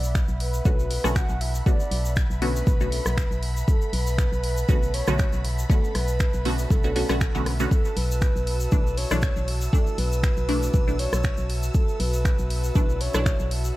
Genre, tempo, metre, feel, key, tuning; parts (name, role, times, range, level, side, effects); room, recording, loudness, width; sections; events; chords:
deep house; 119 BPM; 4/4; swing 54% on 16ths; B minor; A4 = 438 Hz
breathy flute-like synth lead; melody; 0.0-13.5 s; A4 to F#5; -32 LUFS; right 1 dB; chorus, tape echo
organ-like FM bass; bass; 0.0-13.7 s; B1; -26 LUFS; equal; sidechain pumping
egg shaker; percussion; 0.0-13.7 s; -40 LUFS; left 2 dB
airy breathy pad; texture; 0.0-13.8 s; F#4 to A5; -39 LUFS; equal; chorus, sidechain pumping
soft string machine; texture; 0.0-13.8 s; B5 to E6; -41 LUFS; equal; ensemble chorus, sidechain pumping
electronic kick drum; drums; 0.1-13.4 s; -22 LUFS; equal
deep house drum kit; drums; 0.2-13.6 s; finger snaps, hi-hat, rim click; -32 LUFS; equal
filtered dub chord stab; stabs; 0.7-13.4 s; C#3 to F#4; -30 LUFS; equal; phaser, vintage 12-bit sampler grit, sidechain pumping, tape echo
little or no reverb; vinyl crackle; -21 LUFS; side -17 dB against mid
0.0-13.8 A section
0.0 Bm9; 7.7 Dsus2/B